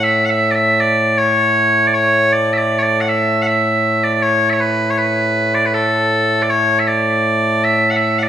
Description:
scottish traditional, Scottish pipe music; 79 BPM; 3/4; straight; A major; A4 = 440 Hz
loud bright bagpipes; solo; 0.0-8.3 s; A2 to F#5; -13 LUFS; equal
wet recital hall reverb, RT60 1.7 s; recorded in a church or concert hall; -13 LUFS; side -9 dB against mid
0.0-8.3 A section

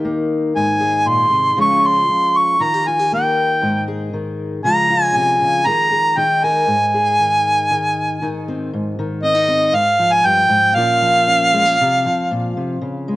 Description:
acoustic folk duo or small band; 118 BPM; 4/4; straight; Ab major; A4 = 440 Hz
fingerpicked steel-string acoustic guitar; accompaniment; 0.0-13.2 s; G2 to Bb4; -21 LUFS; left 1 dB; cassette tape
clear harmonica; melody; 0.6-12.5 s; Eb5 to Db6; -14 LUFS; equal; cassette tape
light reverb, small room ambience; home recording on cassette; -14 LUFS; side -17 dB against mid
0.0-8.7 A section; 8.7-13.2 B section
0.0 Eb; 0.6 Ab; 1.6 Db; 2.6 Eb; 3.6 Ab5; 4.6 Db; 5.7 Ebsus4; 6.2 Eb; 6.7 Ab5; 8.7 Ab; 9.7 Fmadd9; 10.8 Bbm; 11.8 F5/C

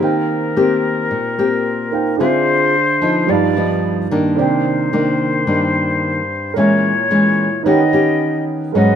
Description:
bossa nova; 110 BPM; 4/4; straight; Eb major; A4 = 440 Hz
reedy silver concert flute; second line; 0.0-9.0 s; Bb4 to Eb5; -19 LUFS; left 3 dB
nylon-string guitar; accompaniment; 0.0-9.0 s; G2 to Ab4; -16 LUFS; left 2 dB
warm concert grand piano; accompaniment; 0.0-9.0 s; G3 to Ab5; -20 LUFS; right 8 dB
moderate studio reverb, RT60 0.6 s; minimal, uncompressed stereo recording; -14 LUFS; side -8 dB against mid
0.0-9.0 A section
0.0 Eb6; 2.2 Dm7b5; 3.3 G7b13; 4.4 Cm9; 6.6 Bbm7b5; 7.7 Eb7alt

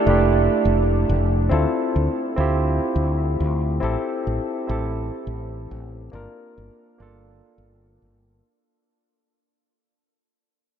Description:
sunset chillout; 104 BPM; 4/4; swing 54% on 16ths; A4 = 441 Hz
barky tine electric piano; accompaniment; 0.0-8.5 s; A3 to Bb4; -22 LUFS; moving between left 4 dB and right 3 dB; overdrive, auto-pan, analog delay
mellow fretless electric bass; bass; 0.1-8.4 s; F1 to D2; -22 LUFS; equal
wet huge ambient reverb, RT60 7.5 s; dreamy mix soaked in reverb; -19 LUFS; side -9 dB against mid
0.0-8.4 A section
fade-out 0.0-8.4
0.0 Fmaj13; 1.5 Dm11; 3.8 Am7; 6.1 Gm9

